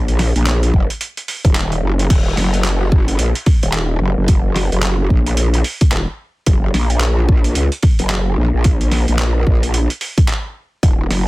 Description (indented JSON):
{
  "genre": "glitch hop",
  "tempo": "110 BPM",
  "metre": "4/4",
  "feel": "swing 60% on 16ths",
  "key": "unclear",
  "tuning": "A4 = 441 Hz",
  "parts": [
    { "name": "growl bass", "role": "bass", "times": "0.0-11.3 s", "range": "Eb1 to Db2", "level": "-16 LUFS", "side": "equal", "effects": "chorus" },
    { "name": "boom bap sampler-style drum kit", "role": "drums", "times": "0.1-11.2 s", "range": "crash cymbal, handclaps, hi-hat, snare drum", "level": "-22 LUFS", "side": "right 1 dB", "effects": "overdrive, studio ambience" },
    { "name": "electronic kick drum", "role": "drums", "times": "0.7-11.0 s", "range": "none", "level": "-14 LUFS", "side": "equal", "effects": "studio ambience" }
  ],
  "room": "little or no reverb",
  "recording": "dense, heavily limited modern master",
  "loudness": "-13 LUFS",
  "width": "side -20 dB against mid",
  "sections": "0.0-11.3 A section",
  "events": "none",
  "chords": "none"
}